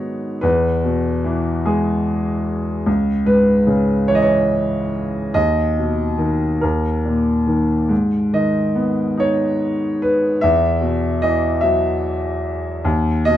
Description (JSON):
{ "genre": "classical, lyrical solo piano", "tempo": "48 BPM (dotted quarters)", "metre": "6/8", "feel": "uneven beats, rubato", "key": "unclear", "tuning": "A4 = 441 Hz", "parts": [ { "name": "clear baby grand piano", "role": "solo", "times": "0.0-13.4 s", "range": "C#2 to E5", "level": "-16 LUFS", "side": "equal", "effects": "none" } ], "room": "light reverb", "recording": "dark, warm production", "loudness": "-16 LUFS", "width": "side -12 dB against mid", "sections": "0.0-13.4 A section", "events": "none", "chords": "0.4 E; 2.9 C#m; 5.4 B/D#; 6.6 D#5; 7.9 G#m; 10.4 Esus2; 12.9 B/D#" }